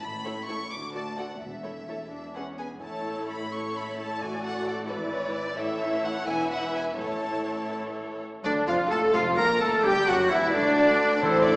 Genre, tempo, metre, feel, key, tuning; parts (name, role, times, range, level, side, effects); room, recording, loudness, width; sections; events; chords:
quick classical-period movement for symphony orchestra; 86 BPM (dotted quarters); 6/8; rubato; A major, D minor from 8.4 s; A4 = 440 Hz
warm chamber violin section; melody; 0.0-11.6 s; B4 to D6; -31 LUFS; equal
rich chamber cello section; bass; 0.0-11.6 s; D2 to Bb2; -38 LUFS; equal
warm chamber double bass section; bass; 0.0-11.6 s; E1 to D2; -39 LUFS; equal
rich chamber violin section; second line; 0.3-11.2 s; D4 to E5; -32 LUFS; equal
warm chamber viola section; accompaniment; 0.3-11.6 s; E3 to Bb4; -32 LUFS; equal
timpani; percussion; 1.4-4.9, 11.2-11.6 s; E2 to A2; -40 LUFS; equal
clear clarinet; second line; 8.4-11.6 s; D4 to Bb4; -29 LUFS; equal
large flute ensemble; second line; 8.4-11.6 s; D5 to E6; -30 LUFS; equal
dark French horn section; sustained chords; 8.4-11.6 s; D3 to E4; -30 LUFS; equal
warm oboe; second line; 8.5-11.6 s; D4 to Bb4; -30 LUFS; equal
mellow bassoon; accompaniment; 8.5-11.6 s; D3 to Bb3; -31 LUFS; equal
dark trumpet section; stabs; 8.5-11.6 s; D4 to Bb4; -28 LUFS; equal
wet scoring stage reverb, RT60 1.4 s; heard from further back in the room, small speaker sound; -24 LUFS; side -25 dB against mid
0.0-8.4 A section; 8.4-11.6 B section
0.0 A; 0.7 D; 1.4 A/E; 2.1 E; 2.8 A; 4.2 D/A; 4.9 E7/G#; 5.6 A; 6.3 E5; 7.0 A; 8.4 Dm; 9.8 Emadd9; 10.5 N.C.